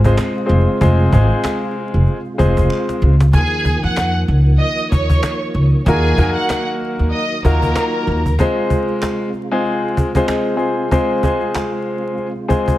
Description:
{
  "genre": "hip hop, boom-bap hip-hop",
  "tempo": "95 BPM",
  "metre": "4/4",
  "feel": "swing 58% on 16ths",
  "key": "unclear",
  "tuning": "A4 = 441 Hz",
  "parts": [
    { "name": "percussive tonewheel organ", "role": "sustained chords", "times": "0.0-12.8 s", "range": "C3 to F4", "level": "-27 LUFS", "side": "right 2 dB", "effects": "chorus vibrato, fast rotary speaker, high-pass filter, low-pass filter" },
    { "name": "upright bass", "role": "bass", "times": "0.0-8.4 s", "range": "F1 to F2", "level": "-14 LUFS", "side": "equal", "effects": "none" },
    { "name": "cajon", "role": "drums", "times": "0.0-12.8 s", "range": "none", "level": "-19 LUFS", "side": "equal", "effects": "none" },
    { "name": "warm upright piano", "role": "accompaniment", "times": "0.1-12.8 s", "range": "Ab3 to C5", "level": "-18 LUFS", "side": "left 1 dB", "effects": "cassette tape, high-pass filter, low-pass filter" },
    { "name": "finger snaps", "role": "percussion", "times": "0.2-11.7 s", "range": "none", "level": "-33 LUFS", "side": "right 3 dB", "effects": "none" },
    { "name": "rich studio violin section", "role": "melody", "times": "3.3-8.4 s", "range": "Ab4 to Gb6", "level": "-21 LUFS", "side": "right 1 dB", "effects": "high-pass filter, low-pass filter, tape echo" }
  ],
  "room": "light reverb, small room ambience",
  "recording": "vinyl crackle",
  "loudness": "-14 LUFS",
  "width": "side -15 dB against mid",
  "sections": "0.0-12.8 A section",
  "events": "drum fill 2.7-3.3; break 8.4-12.8",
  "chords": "0.0 Fm; 3.3 Ebmadd9; 8.4 Fm",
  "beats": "0.18 | 0.81 1.44 2.07 2.70 | 3.33 3.97 4.60 5.23 | 5.86 6.49 7.12 7.75 | 8.39 9.02 9.65 10.28 | 10.91 11.54 12.18"
}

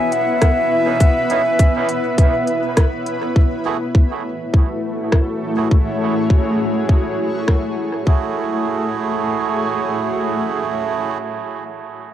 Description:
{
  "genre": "ambient dub",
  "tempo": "102 BPM",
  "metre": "4/4",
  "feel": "straight",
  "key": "F# minor",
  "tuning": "A4 = 442 Hz",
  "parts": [
    { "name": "reedy concert flute", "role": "melody", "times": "0.0-2.8 s", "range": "E5", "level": "-20 LUFS", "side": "equal", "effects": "tape echo" },
    { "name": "granular cloud pad", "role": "sustained chords", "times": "0.0-11.2 s", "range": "A3 to C#5", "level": "-21 LUFS", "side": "left 1 dB", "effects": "built-in reverb, cassette tape" },
    { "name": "felt-muted upright piano", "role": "arpeggios", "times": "0.0-3.4 s", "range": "B3", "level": "-34 LUFS", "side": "left 12 dB", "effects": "none" },
    { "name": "organic electronic drum kit", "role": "drums", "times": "0.1-7.6 s", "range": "hi-hat, rim click", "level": "-24 LUFS", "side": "equal", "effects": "cassette tape, dub echo" },
    { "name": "electronic kick drum", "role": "drums", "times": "0.4-8.2 s", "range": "none", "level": "-13 LUFS", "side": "equal", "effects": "cassette tape" },
    { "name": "melodica", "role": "stabs", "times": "0.9-11.2 s", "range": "A3 to G#4", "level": "-23 LUFS", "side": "right 9 dB", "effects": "cassette tape, dub echo" }
  ],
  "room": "light reverb",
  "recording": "home recording on cassette",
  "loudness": "-16 LUFS",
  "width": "side -11 dB against mid",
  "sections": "0.0-3.4 A section; 3.4-8.1 B section; 8.1-10.4 C section",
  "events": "band accent 2.8",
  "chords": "0.0 C#m7; 3.4 F#m9",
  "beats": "0.42 | 1.01 1.59 2.18 2.77 | 3.36 3.95 4.54 5.12 | 5.71 6.30 6.89 7.48 | 8.06 8.65 9.24 9.83"
}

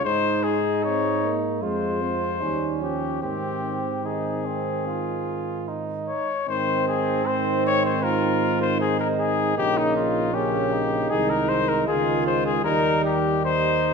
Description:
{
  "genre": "classical, brass quintet",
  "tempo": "77 BPM",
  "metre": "4/4",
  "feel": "rubato",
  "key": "Ab major",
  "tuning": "A4 = 440 Hz",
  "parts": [
    { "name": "clear trumpet", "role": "melody", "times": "0.0-13.9 s", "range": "Eb4 to Db5", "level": "-25 LUFS", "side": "left 6 dB", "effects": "none" },
    { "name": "clear flugelhorn", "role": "second line", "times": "0.0-13.9 s", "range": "C4 to F4", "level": "-28 LUFS", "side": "right 6 dB", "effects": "none" },
    { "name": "dark French horn", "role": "accompaniment", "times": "0.0-13.9 s", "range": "Eb3 to C4", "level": "-30 LUFS", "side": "left 4 dB", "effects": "none" },
    { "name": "mellow euphonium", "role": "accompaniment", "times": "0.0-13.9 s", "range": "Db3 to Eb4", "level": "-30 LUFS", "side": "right 4 dB", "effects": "none" },
    { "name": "mellow tuba", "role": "bass", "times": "0.1-13.9 s", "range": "Bb1 to Ab2", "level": "-30 LUFS", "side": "right 5 dB", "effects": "none" }
  ],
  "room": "moderate scoring stage reverb, RT60 1.8 s",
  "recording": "minimal, uncompressed stereo recording",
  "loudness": "-21 LUFS",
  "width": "side -5 dB against mid",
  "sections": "0.0-6.5 A section; 6.5-13.9 A section",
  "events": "none",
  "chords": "0.1 Ab5; 1.6 Fm; 2.4 Eb7; 3.2 Ab; 9.6 Gdim/Bb; 11.1 Ab/C; 12.6 Eb",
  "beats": "| 0.05 0.85 1.62 2.42 | 3.22 4.05 4.87 5.67 | 6.48 7.26 8.03 8.80 | 9.57 10.34 11.11 11.88 | 12.64 13.44"
}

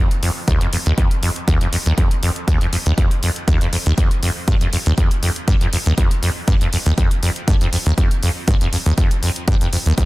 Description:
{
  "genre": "acid house",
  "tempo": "120 BPM",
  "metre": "4/4",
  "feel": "swing 54% on 16ths",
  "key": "unclear",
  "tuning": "A4 = 440 Hz",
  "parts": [
    { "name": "acid bass, saw", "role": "riff", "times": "0.0-10.1 s", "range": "Eb2 to G2", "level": "-18 LUFS", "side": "equal", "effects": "lush chorus, cassette tape, sidechain pumping, dub echo" },
    { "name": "electronic hi-hat", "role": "drums", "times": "0.1-10.1 s", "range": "none", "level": "-27 LUFS", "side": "left 1 dB", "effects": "none" },
    { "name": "electronic kick drum", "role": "drums", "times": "0.5-10.1 s", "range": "none", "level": "-17 LUFS", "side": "equal", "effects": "none" }
  ],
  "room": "little or no reverb",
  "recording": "dense, heavily limited modern master",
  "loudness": "-15 LUFS",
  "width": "side -20 dB against mid",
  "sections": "0.0-10.1 A section",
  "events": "none",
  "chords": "none",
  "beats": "0.48 0.98 1.48 | 1.98 2.48 2.98 3.48 | 3.98 4.48 4.98 5.48 | 5.98 6.48 6.98 7.48 | 7.98 8.48 8.98 9.48 | 9.98"
}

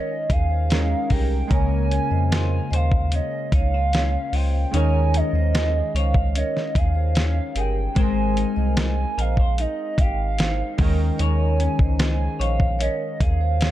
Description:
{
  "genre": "indie pop, bedroom pop",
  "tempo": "74 BPM",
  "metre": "4/4",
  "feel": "straight",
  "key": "unclear",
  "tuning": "A4 = 441 Hz",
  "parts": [
    { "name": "hollow clarinet-like synth lead", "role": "melody", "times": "0.0-13.7 s", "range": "Eb5 to Ab5", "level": "-28 LUFS", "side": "right 3 dB", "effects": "lush chorus, tape echo" },
    { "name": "vibraphone with hard mallets", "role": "second line", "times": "0.0-13.6 s", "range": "G4 to G5", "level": "-32 LUFS", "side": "right 6 dB", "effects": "wide subtle chorus, tape echo" },
    { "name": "chorused retro synth keys", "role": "accompaniment", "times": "0.0-13.7 s", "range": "Ab3 to Bb4", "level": "-33 LUFS", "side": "right 6 dB", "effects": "cassette tape" },
    { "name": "semi-hollow electric guitar", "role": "accompaniment", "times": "0.0-13.7 s", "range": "Db3 to Db5", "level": "-28 LUFS", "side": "left 6 dB", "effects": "wide subtle chorus, vibrato effect" },
    { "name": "round analog bass", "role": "bass", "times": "0.3-13.7 s", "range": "G1 to F2", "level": "-22 LUFS", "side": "equal", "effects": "none" },
    { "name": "dusty soul sampler-style drum kit", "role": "drums", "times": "0.3-13.7 s", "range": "hi-hat, kick drum, snare drum", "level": "-22 LUFS", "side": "equal", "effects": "none" }
  ],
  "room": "little or no reverb",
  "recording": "dark, warm production",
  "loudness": "-19 LUFS",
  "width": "side -14 dB against mid",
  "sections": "0.0-13.7 A section",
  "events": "none",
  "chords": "0.0 Eb7sus4; 1.5 Bbm9/Db; 4.7 Eb7sus4; 8.0 Abmaj9; 10.8 Eb7sus4",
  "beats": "0.71 | 1.51 2.32 3.13 3.94 | 4.74 5.55 6.35 7.16 | 7.97 8.77 9.58 10.39 | 11.19 12.00 12.81 13.61"
}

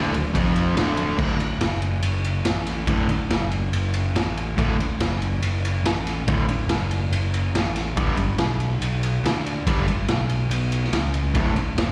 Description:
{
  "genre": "garage rock duo or trio",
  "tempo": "142 BPM",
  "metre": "4/4",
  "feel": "straight",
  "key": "D major",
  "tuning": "A4 = 440 Hz",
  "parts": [
    { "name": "fuzz guitar", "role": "riff", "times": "0.0-11.5 s", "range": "D2 to G3", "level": "-26 LUFS", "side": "equal", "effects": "distortion, slapback echo" },
    { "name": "fuzz picked electric bass", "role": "bass", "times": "0.0-11.9 s", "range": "D1 to D2", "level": "-26 LUFS", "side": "equal", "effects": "overdrive" },
    { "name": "raw garage drum kit", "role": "drums", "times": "0.1-11.9 s", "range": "crash cymbal, kick drum, ride cymbal, snare drum", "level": "-27 LUFS", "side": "equal", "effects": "none" }
  ],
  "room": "light reverb, small room ambience",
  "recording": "live gig heard through the venue's PA, cassette tape, recital hall reverb",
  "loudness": "-23 LUFS",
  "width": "mono",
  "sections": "0.0-1.2 A section; 1.2-11.9 B section",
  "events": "none",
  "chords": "0.0 Dm; 1.2 D; 8.0 G; 11.4 D",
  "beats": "0.35 0.77 | 1.20 1.62 2.04 2.46 | 2.89 3.31 3.74 4.16 | 4.58 5.01 5.43 5.86 | 6.28 6.71 7.13 7.55 | 7.98 8.40 8.82 9.25 | 9.67 10.09 10.52 10.94 | 11.36 11.78"
}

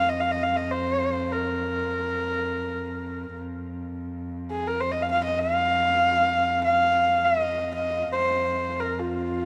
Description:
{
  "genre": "mongolian traditional, Mongolian folk",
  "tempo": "free time",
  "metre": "none",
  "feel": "none",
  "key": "unclear",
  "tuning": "A4 = 440 Hz",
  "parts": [
    { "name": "rich horsehead fiddle", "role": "melody", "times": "0.0-9.5 s", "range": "F4 to F5", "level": "-25 LUFS", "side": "equal", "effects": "none" },
    { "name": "muted cello", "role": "drone", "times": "0.0-9.5 s", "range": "F2", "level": "-34 LUFS", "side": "equal", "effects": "none" }
  ],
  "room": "moderate huge ambient reverb, RT60 5.9 s",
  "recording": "none",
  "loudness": "-25 LUFS",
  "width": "mono",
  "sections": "0.0-9.5 A section",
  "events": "none",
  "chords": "none",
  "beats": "free time"
}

